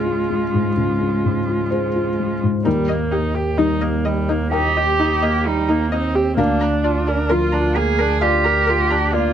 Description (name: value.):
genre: neoclassical piano and strings.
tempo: 65 BPM.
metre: 4/4.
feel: rubato.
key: unclear.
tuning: A4 = 440 Hz.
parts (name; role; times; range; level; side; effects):
muted cello; second line; 0.0-9.3 s; Ab3 to Ab4; -21 LUFS; right 4 dB; none.
felt-muted upright piano; accompaniment; 0.0-9.3 s; Db2 to G5; -22 LUFS; left 3 dB; none.
muted viola; accompaniment; 0.0-9.3 s; G3 to Bb4; -23 LUFS; right 3 dB; none.
muted double bass; bass; 2.6-9.3 s; D2 to Eb2; -23 LUFS; equal; none.
string-like resonator pluck; arpeggios; 2.7-9.0 s; Eb4 to Bb5; -24 LUFS; left 2 dB; chorus, slapback echo.
room: light reverb.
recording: nothing above 10.9 kHz.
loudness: -16 LUFS.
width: side -9 dB against mid.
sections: 0.0-2.7 A section; 2.7-9.3 B section.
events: none.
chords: 0.0 Db; 2.7 Eb; 6.4 Bb/D.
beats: 0.76 1.71 | 2.65 3.58 4.53 5.46 | 6.38 7.30 8.22 9.13.